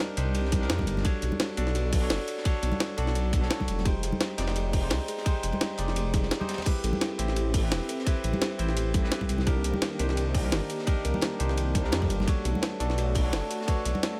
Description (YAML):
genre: liquid drum and bass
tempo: 171 BPM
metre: 4/4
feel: swing 54% on 16ths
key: unclear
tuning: A4 = 441 Hz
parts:
  - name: barky tine electric piano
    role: accompaniment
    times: 0.0-14.2 s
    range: Ab3 to G5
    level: -37 LUFS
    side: equal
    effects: phaser, tape echo
  - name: kalimba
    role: arpeggios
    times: 0.0-14.2 s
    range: F#4 to B4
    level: -40 LUFS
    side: equal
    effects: dub echo
  - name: crunchy breakbeat drum kit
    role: drums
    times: 0.0-14.1 s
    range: hi-hat, ride cymbal, snare drum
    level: -42 LUFS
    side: equal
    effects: high-pass filter on cymbals, high-pass filter on hats, high-pass filter on snare, high-pass filter on room
  - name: jungle sampler-style drum kit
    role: drums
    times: 0.0-14.1 s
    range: crash cymbal, hi-hat, snare drum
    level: -34 LUFS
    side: equal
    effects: none
  - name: swelling detuned saw bass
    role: bass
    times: 0.2-13.9 s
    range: E1 to F2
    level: -31 LUFS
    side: equal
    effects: none
  - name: electronic kick drum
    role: drums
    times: 0.5-13.8 s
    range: none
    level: -29 LUFS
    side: equal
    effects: overdrive
  - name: congas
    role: percussion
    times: 0.5-14.0 s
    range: none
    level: -37 LUFS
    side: equal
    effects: none
  - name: warm analog pad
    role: sustained chords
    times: 6.7-14.2 s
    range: Eb3 to G4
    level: -40 LUFS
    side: equal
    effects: chorus, sidechain pumping
room: small room ambience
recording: none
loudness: -28 LUFS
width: mono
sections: 0.0-14.2 A section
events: break 6.3-6.7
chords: 0.0 Cm9; 1.0 Bm9; 3.9 Fm9; 6.7 Am9; 9.5 Cm9; 12.3 Bm9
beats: 0.00 0.35 0.70 | 1.05 1.40 1.75 2.10 | 2.45 2.80 3.15 3.50 | 3.86 4.21 4.56 4.91 | 5.26 5.61 5.96 6.31 | 6.66 7.01 7.37 7.72 | 8.07 8.42 8.77 9.12 | 9.47 9.82 10.17 10.52 | 10.87 11.22 11.57 11.93 | 12.28 12.63 12.98 13.33 | 13.68 14.03